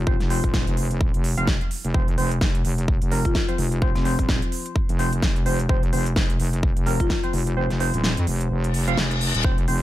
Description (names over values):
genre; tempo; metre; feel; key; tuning
bass house; 128 BPM; 4/4; swing 58% on 16ths; unclear; A4 = 435 Hz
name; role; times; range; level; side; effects
wobble bass; bass; 0.0-9.8 s; Eb1 to F2; -24 LUFS; equal; chorus, overdrive, sidechain pumping
percussive organ stab; stabs; 0.1-9.8 s; F3 to F5; -29 LUFS; right 1 dB; wide subtle chorus, sidechain pumping, tape echo
electronic kick drum; drums; 0.1-9.6 s; none; -22 LUFS; equal; none
big-room dance drum kit; drums; 0.2-9.8 s; hi-hat, snare drum; -28 LUFS; right 1 dB; none
marimba with medium mallets; melody; 3.3-7.2 s; C4 to F4; -32 LUFS; left 4 dB; tape echo
reverse cymbal; sound effects; 8.7-9.4 s; none; -28 LUFS; left 5 dB; none
room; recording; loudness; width
little or no reverb; none; -20 LUFS; side -15 dB against mid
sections
0.0-9.8 A section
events
kick drops out 7.6-9.4; reverse cymbal 8.7-9.4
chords
0.0 F5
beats
| 0.07 0.54 1.01 1.48 | 1.94 2.41 2.88 3.35 | 3.82 4.29 4.76 5.22 | 5.69 6.16 6.63 7.10 | 7.57 8.04 8.51 8.97 | 9.44